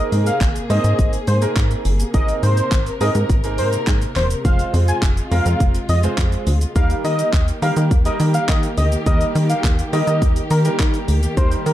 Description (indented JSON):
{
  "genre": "dance-pop",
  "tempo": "104 BPM",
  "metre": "4/4",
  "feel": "straight",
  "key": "Ab major",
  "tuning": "A4 = 442 Hz",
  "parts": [
    { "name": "wide unison lead", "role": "melody", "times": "0.0-11.7 s", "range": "Bb4 to Ab5", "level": "-24 LUFS", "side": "equal", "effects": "digital delay" },
    { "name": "clear grand piano", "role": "accompaniment", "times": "0.0-11.7 s", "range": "G3 to C5", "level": "-26 LUFS", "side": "right 3 dB", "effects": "sidechain pumping" },
    { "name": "dark studio string section", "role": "sustained chords", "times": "0.0-11.7 s", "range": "C3 to Bb4", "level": "-27 LUFS", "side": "left 1 dB", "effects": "sidechain pumping" },
    { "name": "plucky analog bass", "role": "bass", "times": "0.0-11.7 s", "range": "Fb1 to Eb3", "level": "-18 LUFS", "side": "equal", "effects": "sidechain pumping" },
    { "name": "pop drum kit", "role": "drums", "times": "0.1-11.7 s", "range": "handclaps, hi-hat, kick drum, shaker", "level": "-20 LUFS", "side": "equal", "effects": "none" }
  ],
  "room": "light reverb",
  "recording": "dark, warm production",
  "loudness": "-15 LUFS",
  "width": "side -13 dB against mid",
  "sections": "0.0-11.7 A section",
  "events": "none",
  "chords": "0.0 Abadd9; 4.4 Fm; 6.8 Eb",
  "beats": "0.41 0.99 1.56 | 2.14 2.72 3.29 3.87 | 4.45 5.03 5.60 6.18 | 6.76 7.33 7.91 8.49 | 9.06 9.64 10.22 10.79 | 11.37"
}